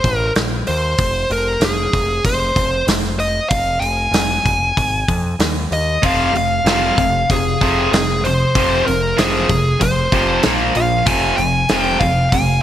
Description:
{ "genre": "hard rock", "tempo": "95 BPM", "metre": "4/4", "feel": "straight", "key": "F minor", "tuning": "A4 = 440 Hz", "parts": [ { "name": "bluesy overdriven lead guitar", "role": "melody", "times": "0.0-12.6 s", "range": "Ab4 to Ab5", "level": "-18 LUFS", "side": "equal", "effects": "distortion, digital delay" }, { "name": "growling picked electric bass", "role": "bass", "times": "0.0-12.6 s", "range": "F1 to F2", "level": "-22 LUFS", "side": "equal", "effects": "overdrive" }, { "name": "big rock drum kit", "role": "drums", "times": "0.0-12.5 s", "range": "hi-hat, kick drum, snare drum", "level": "-20 LUFS", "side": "equal", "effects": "gated reverb" }, { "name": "overdriven electric guitar", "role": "riff", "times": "6.0-12.6 s", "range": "F2 to Bb3", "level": "-18 LUFS", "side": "equal", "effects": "none" } ], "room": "light reverb, small room ambience", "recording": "bright 1980s-style digital production", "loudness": "-14 LUFS", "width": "side -11 dB against mid", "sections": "0.0-12.6 A section", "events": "none", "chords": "0.4 Bbsus24; 1.0 Fm; 4.8 Fm/Ab; 5.4 N.C.; 6.0 Fm; 10.4 Bb5; 11.1 Fm" }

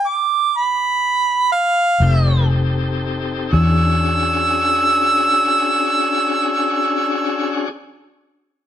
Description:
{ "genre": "slow blues", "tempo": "38-44 BPM (dotted quarters)", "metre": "12/8", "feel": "straight", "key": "E mixolydian", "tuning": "A4 = 440 Hz", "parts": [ { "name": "mellow harmonica", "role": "second line", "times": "0.0-7.7 s", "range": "F5 to E6", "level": "-16 LUFS", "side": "right 2 dB", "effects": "none" }, { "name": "bright tonewheel organ", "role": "sustained chords", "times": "2.0-7.7 s", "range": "C4 to A4", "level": "-22 LUFS", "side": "left 4 dB", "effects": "slow rotary speaker, overdrive" }, { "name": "vintage muted fingered electric bass", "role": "bass", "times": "2.0-7.7 s", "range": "F1 to E2", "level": "-17 LUFS", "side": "left 1 dB", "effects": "none" } ], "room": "moderate stone room reverb, RT60 1.2 s", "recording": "band playing live in one room", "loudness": "-15 LUFS", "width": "side -10 dB against mid", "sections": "0.0-3.5 A section; 3.5-8.7 B section", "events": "slowing down 0.0-3.5; harmonica solo 0.0-3.5; stop 0.0-2.0", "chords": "0.0 N.C.; 2.0 F9; 3.5 E13" }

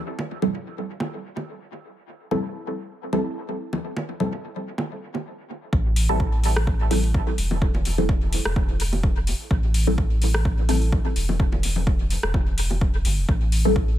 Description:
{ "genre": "dub techno", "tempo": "127 BPM", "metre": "4/4", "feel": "swing 55% on 16ths", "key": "A minor", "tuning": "A4 = 440 Hz", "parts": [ { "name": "bongos and congas", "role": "percussion", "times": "0.2-13.7 s", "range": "none", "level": "-32 LUFS", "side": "left 2 dB", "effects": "overdrive, sidechain pumping on perc, small room ambience, dub echo" }, { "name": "filtered dub chord stab", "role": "stabs", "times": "0.4-13.9 s", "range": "G3 to A4", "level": "-27 LUFS", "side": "right 1 dB", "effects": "phaser, sidechain pumping, dub echo" }, { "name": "warm sub bass", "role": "bass", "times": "5.7-14.0 s", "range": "E1 to A1", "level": "-23 LUFS", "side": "equal", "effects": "sidechain pumping" }, { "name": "electronic kick drum", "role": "drums", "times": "5.7-13.9 s", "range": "none", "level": "-23 LUFS", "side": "equal", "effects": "overdrive, small room ambience" }, { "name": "deep house drum kit", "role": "drums", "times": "6.0-13.6 s", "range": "hi-hat, rim click", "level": "-30 LUFS", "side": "left 1 dB", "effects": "overdrive, small room ambience, dub echo" } ], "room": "digital ambience", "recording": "echo-heavy mix", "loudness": "-21 LUFS", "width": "side -12 dB against mid", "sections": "0.0-5.7 A section; 5.7-14.0 B section", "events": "filter sweep on synth stab 5.7-14.0", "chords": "0.0 Am7" }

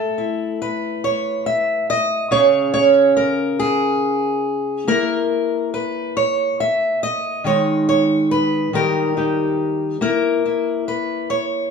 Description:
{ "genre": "folk, solo fingerstyle acoustic guitar", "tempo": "47 BPM (dotted quarters)", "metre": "6/8", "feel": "straight", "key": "unclear", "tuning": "A4 = 440 Hz", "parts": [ { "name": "fingerpicked steel-string acoustic guitar", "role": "solo", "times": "0.0-11.7 s", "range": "C#3 to E5", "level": "-17 LUFS", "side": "equal", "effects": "none" } ], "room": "wet large studio reverb, RT60 1.2 s", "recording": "band playing live in one room", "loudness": "-16 LUFS", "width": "side -5 dB against mid", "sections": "0.0-11.7 A section", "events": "none", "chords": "0.0 A5; 2.3 C#5; 4.9 A#dim; 7.4 D#sus4; 8.7 D#; 10.0 A#dim" }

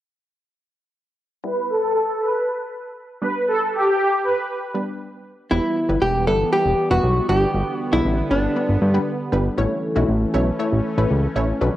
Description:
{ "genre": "pop", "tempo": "118 BPM", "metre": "4/4", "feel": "straight", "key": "E dorian", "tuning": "A4 = 440 Hz", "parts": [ { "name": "filtered supersaw swell", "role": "melody", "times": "1.4-4.3 s", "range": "G4 to B4", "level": "-20 LUFS", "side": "equal", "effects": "low-pass filter, cassette tape" }, { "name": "wide unison pluck", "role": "accompaniment", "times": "1.4-11.8 s", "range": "F#3 to C#5", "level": "-26 LUFS", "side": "left 1 dB", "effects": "auto-pan, low-pass filter, cassette tape" }, { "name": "hollow-body jazz guitar", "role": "melody", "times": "5.5-8.8 s", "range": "D4 to A4", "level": "-20 LUFS", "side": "equal", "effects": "cassette tape, analog delay" }, { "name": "sweeping resonant pad", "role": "sustained chords", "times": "5.5-11.8 s", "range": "D3 to F#4", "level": "-26 LUFS", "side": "right 1 dB", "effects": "chorus, cassette tape" }, { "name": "fat analog bass", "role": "bass", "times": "5.5-11.7 s", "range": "E1 to G2", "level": "-20 LUFS", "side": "equal", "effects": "none" } ], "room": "moderate spring reverb, RT60 1.8 s", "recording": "home recording on cassette", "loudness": "-18 LUFS", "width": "side -14 dB against mid", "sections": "1.4-5.5 A section; 5.5-11.8 B section", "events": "filter sweep 1.4-5.5", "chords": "1.4 Em; 3.2 G; 5.5 Em; 7.3 G; 9.6 A" }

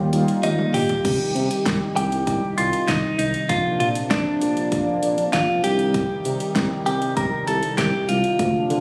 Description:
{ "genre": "synth-pop", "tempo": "98 BPM", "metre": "4/4", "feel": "straight", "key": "C minor", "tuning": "A4 = 442 Hz", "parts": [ { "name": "direct-recorded clean electric guitar", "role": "melody", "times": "0.0-8.8 s", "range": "D4 to Bb4", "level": "-25 LUFS", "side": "equal", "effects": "phaser" }, { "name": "warm analog pad", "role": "sustained chords", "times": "0.0-8.8 s", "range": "C3 to F4", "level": "-30 LUFS", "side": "equal", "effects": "chorus" }, { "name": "smooth synth bass", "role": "bass", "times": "0.0-8.8 s", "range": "Bb1 to D3", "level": "-26 LUFS", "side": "equal", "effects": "none" }, { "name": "mellow synth brass", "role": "accompaniment", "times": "0.1-0.7 s", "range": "G3 to F4", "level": "-28 LUFS", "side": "equal", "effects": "chorus" }, { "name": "pop drum kit", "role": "drums", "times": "0.1-8.8 s", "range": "crash cymbal, hi-hat, kick drum, snare drum, toms", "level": "-30 LUFS", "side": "equal", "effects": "none" } ], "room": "light reverb", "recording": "recorded on a phone in the room, studio reverb", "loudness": "-21 LUFS", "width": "mono", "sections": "0.0-1.0 A section; 1.0-8.8 B section", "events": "drum fill 0.4-1.0", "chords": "0.0 Ebadd9; 1.0 Cm; 3.5 Bbadd9; 5.6 Cm" }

